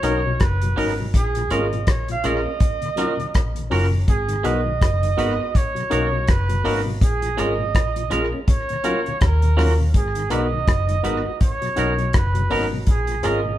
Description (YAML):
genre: lovers rock reggae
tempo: 82 BPM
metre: 4/4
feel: swing 58% on 16ths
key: G# dorian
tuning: A4 = 436 Hz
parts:
  - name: clear flugelhorn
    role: melody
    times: 0.0-13.6 s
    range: G#4 to E#5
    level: -26 LUFS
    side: right 4 dB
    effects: none
  - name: barky tine electric piano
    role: accompaniment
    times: 0.0-13.4 s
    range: B3 to A#4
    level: -26 LUFS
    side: left 2 dB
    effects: none
  - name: mellow tonewheel organ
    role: accompaniment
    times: 0.0-13.5 s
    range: D#2 to F#4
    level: -30 LUFS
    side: left 3 dB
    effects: overdrive, chorus vibrato, slow rotary speaker
  - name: twangy electric guitar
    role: stabs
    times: 0.0-13.4 s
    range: F#3 to B4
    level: -29 LUFS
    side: right 4 dB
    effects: none
  - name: vintage muted fingered electric bass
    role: bass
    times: 0.0-13.6 s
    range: F#1 to D#2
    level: -22 LUFS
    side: equal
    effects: none
  - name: damped 70s drum kit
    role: drums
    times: 0.0-13.4 s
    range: hi-hat, kick drum, rim click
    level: -21 LUFS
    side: equal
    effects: none
room: moderate large studio reverb, RT60 1.4 s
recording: band playing live in one room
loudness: -18 LUFS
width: side -13 dB against mid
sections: 0.0-13.6 A section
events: none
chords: 0.0 Bmaj7; 1.1 A#m7; 2.6 D#m7; 4.1 G#m7; 5.5 Bmaj7; 7.0 A#m7; 8.5 D#m7; 9.9 G#m7; 11.4 Bmaj7; 12.9 A#m7